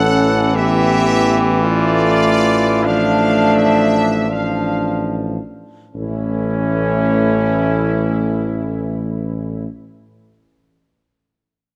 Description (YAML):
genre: classical, hymn-like piece for brass band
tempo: 34-61 BPM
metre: 3/4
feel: rubato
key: A major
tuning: A4 = 440 Hz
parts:
  - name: clear trumpet section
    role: melody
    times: 0.0-9.7 s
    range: E4 to F#5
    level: -26 LUFS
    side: equal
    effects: none
  - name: mellow flugelhorn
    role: second line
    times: 0.0-9.6 s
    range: C#4 to A4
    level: -22 LUFS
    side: equal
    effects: none
  - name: bright trombone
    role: accompaniment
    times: 0.0-9.7 s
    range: E3 to F3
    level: -25 LUFS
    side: equal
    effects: none
  - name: warm euphonium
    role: accompaniment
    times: 0.0-9.7 s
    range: A3 to D4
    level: -23 LUFS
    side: equal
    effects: none
  - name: mellow tuba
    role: bass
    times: 0.0-9.7 s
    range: A1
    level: -22 LUFS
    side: equal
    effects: none
room: moderate concert hall reverb, RT60 2.0 s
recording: close, detailed microphones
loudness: -16 LUFS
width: mono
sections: 0.0-6.0 A section; 6.0-10.8 B section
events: slowing down 0.0-6.0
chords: 0.0 A7; 1.6 Dm/A; 6.0 A